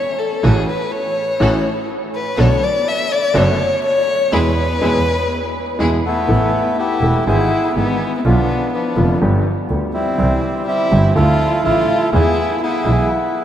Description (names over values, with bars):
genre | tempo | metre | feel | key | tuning
tango | 123 BPM | 4/4 | rubato | A minor from 6.3 s | A4 = 437 Hz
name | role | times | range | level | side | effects
warm violin | second line | 0.0-13.1 s | B3 to E5 | -20 LUFS | left 2 dB | none
clear grand piano | accompaniment | 0.4-13.1 s | E1 to A4 | -20 LUFS | equal | none
rich studio string section | stabs | 0.4-6.0 s | B3 to A4 | -26 LUFS | right 1 dB | none
warm double bass | bass | 0.4-13.1 s | E1 to E2 | -18 LUFS | right 1 dB | none
bandoneon | melody | 6.1-13.4 s | F3 to A4 | -18 LUFS | equal | none
room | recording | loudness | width
wet cathedral reverb, RT60 6.1 s | in a vast, echoing space | -14 LUFS | side -10 dB against mid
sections
0.0-6.3 A section; 6.3-13.4 B section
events
violin solo 0.0-6.3; band accent 4.3-6.3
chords
0.4 F#m7/A; 2.4 Bm7; 4.3 E; 6.3 Asus2; 7.3 E/G#; 8.2 Bdim; 9.2 G; 10.2 C; 11.2 Dmadd9; 12.1 E